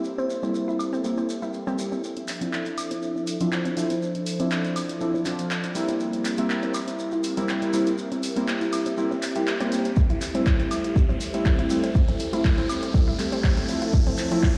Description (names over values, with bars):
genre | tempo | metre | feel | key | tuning
deep house | 121 BPM | 4/4 | swing 54% on 16ths | D minor | A4 = 441 Hz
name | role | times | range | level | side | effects
airy breathy pad | sustained chords | 0.0-14.6 s | F3 to E5 | -37 LUFS | equal | chorus, sidechain pumping
shekere | percussion | 0.0-14.5 s | none | -44 LUFS | equal | none
warbly tape-like pad | texture | 0.0-14.6 s | F3 to E5 | -38 LUFS | equal | none
bell-like FM electric piano | melody | 0.2-0.9 s | C5 | -36 LUFS | equal | chorus, tremolo, delay
analog pluck | arpeggios | 0.2-14.4 s | C4 to E4 | -36 LUFS | equal | chorus, sidechain pumping, delay
warm analog keys | stabs | 0.4-14.6 s | F3 to G4 | -29 LUFS | equal | chorus, sidechain pumping, low-pass filter, delay
punchy analog drum machine | drums | 0.8-14.5 s | handclaps, hi-hat, woodblock | -36 LUFS | equal | high-pass filter on cymbals, high-pass filter on perc, high-pass filter on hats, high-pass filter on snare
riser | sound effects | 5.6-14.6 s | none | -43 LUFS | equal | none
electronic kick drum | drums | 10.0-14.5 s | none | -23 LUFS | equal | overdrive
room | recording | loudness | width
moderate lush hall reverb, RT60 2.1 s | played on a big sound system in a bare room, large studio reverb | -25 LUFS | mono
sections
0.0-2.0 A section; 2.0-14.6 B section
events
build-up 2.0-14.6; filter sweep on synth keys 2.0-14.6; filter sweep on analog synth pad 2.0-14.6; filter sweep on synth arpeggio sound 2.0-14.6; riser 5.6-14.6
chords
0.0 C7; 2.0 Dm9; 5.8 C7; 10.0 Am7; 13.9 Fmaj7